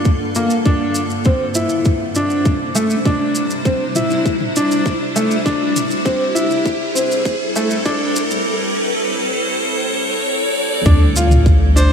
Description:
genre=piano and strings electronica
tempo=100 BPM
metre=4/4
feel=straight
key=unclear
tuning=A4 = 439 Hz
part: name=granular cloud pad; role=sustained chords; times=0.0-11.9 s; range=G2 to C5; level=-22 LUFS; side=equal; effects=built-in reverb
part: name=clear upright piano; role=riff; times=0.0-11.9 s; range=A3 to F4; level=-18 LUFS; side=equal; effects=digital delay
part: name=electronic shaker and toms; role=drums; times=0.0-11.9 s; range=none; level=-27 LUFS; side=right 1 dB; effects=small room ambience
part: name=riser and sub drop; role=sound effects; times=1.2-11.9 s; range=none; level=-22 LUFS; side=equal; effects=none
part: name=electronic kick drum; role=drums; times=0.1-11.6 s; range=none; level=-15 LUFS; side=equal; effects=small room ambience
part: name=warm sub bass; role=bass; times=10.9-11.9 s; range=D2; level=-13 LUFS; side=equal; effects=sidechain pumping
part: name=warm violin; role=melody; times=11.8-11.9 s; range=C5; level=-18 LUFS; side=equal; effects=none
room=moderate huge ambient reverb, RT60 4.9 s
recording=high-pass filter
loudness=-14 LUFS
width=side -7 dB against mid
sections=0.0-10.9 A section; 10.9-11.9 B section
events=build-up 0.0-10.9; filter sweep 0.0-10.9; riser 1.2-10.9; drop 10.9-11.9; impact 10.9-11.9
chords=0.0 Gm7; 1.3 Cadd9; 6.1 Am7; 10.9 Dm

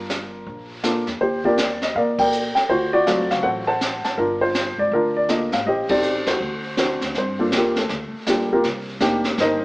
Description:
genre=jazz piano trio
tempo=161 BPM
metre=4/4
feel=swing 64% on 8ths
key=G minor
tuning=A4 = 442 Hz
part: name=dark baby grand piano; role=melody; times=0.0-9.6 s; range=F#3 to A5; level=-19 LUFS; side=equal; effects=none
part: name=upright bass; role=bass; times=0.0-9.6 s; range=F1 to Bb2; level=-32 LUFS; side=equal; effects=none
part: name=jazz brush drum kit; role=drums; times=0.1-9.6 s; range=brushed snare drum, hi-hat, kick drum, ride cymbal, snare drum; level=-26 LUFS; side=equal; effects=none
room=moderate studio reverb, RT60 1.0 s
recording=band playing live in one room, AM radio sound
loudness=-18 LUFS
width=side -23 dB against mid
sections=0.0-7.1 A section; 7.1-9.6 B section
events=band accent 2.1, 5.8; grand piano solo 7.1-9.6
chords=0.0 Gm7; 1.2 Ebmaj7; 2.7 D7#9; 4.2 Gm7; 5.7 Am7b5; 6.4 D7; 7.1 Gm7; 8.6 Cm7

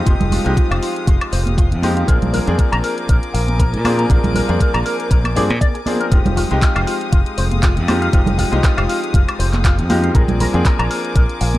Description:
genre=nu-disco, nu disco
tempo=119 BPM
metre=4/4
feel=swing 55% on 16ths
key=F dorian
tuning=A4 = 441 Hz
part: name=bright grand piano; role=accompaniment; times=0.0-11.6 s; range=F3 to Ab4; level=-22 LUFS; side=left 2 dB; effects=sidechain pumping, tape echo
part: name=clear studio string section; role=sustained chords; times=0.0-11.6 s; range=Ab3 to Eb6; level=-27 LUFS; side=left 2 dB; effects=sidechain pumping
part: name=electric guitar with an envelope filter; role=riff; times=0.1-11.5 s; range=F4 to Bb5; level=-25 LUFS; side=left 2 dB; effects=lush chorus
part: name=modern bright fingered electric bass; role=bass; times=0.1-11.6 s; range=F1 to Bb2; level=-18 LUFS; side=equal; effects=none
part: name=electronic kick drum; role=drums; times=0.1-11.3 s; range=none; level=-14 LUFS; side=equal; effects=none
part: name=pop drum kit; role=drums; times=0.1-11.6 s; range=handclaps, hi-hat, woodblock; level=-26 LUFS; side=equal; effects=overdrive
part: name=congas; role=percussion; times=0.2-11.6 s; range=none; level=-24 LUFS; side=right 2 dB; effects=none
room=light reverb, digital ambience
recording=dark, warm production, lossy compression artefacts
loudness=-14 LUFS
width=side -16 dB against mid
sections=0.0-11.6 A section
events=none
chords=0.0 Fm7; 2.1 Bb7; 6.1 Fm7; 10.2 Bb7

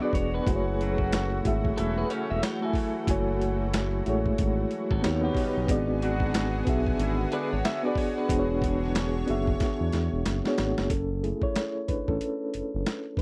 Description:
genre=R&B, neo-soul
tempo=92 BPM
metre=4/4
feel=swing 61% on 16ths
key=F# minor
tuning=A4 = 445 Hz
part: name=electric guitar through a small old amp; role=second line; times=0.0-9.1 s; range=F#4 to E5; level=-37 LUFS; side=equal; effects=tremolo
part: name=mellow reed electric piano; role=accompaniment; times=0.0-13.2 s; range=G#3 to G#5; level=-31 LUFS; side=equal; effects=fast tremolo
part: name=lush unison pad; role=sustained chords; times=0.0-10.9 s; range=C#3 to C#5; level=-39 LUFS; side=equal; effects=chorus
part: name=smooth synth bass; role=bass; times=0.1-13.2 s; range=E1 to E2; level=-32 LUFS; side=equal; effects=none
part: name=boom bap sampler-style drum kit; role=drums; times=0.1-13.2 s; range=hi-hat, kick drum, snare drum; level=-32 LUFS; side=equal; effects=none
part: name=mellow horn section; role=stabs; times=0.8-7.6 s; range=C#3 to F#4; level=-37 LUFS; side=equal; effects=none
room=little or no reverb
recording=dry, close 1970s-style studio recording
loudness=-27 LUFS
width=mono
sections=0.0-10.9 A section; 10.9-13.2 B section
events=drum fill 9.6-10.9; reed electric piano solo 10.9-13.2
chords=0.5 F#m9; 5.0 D#7alt; 5.7 G#m7b5; 8.3 E13; 10.9 F#m9

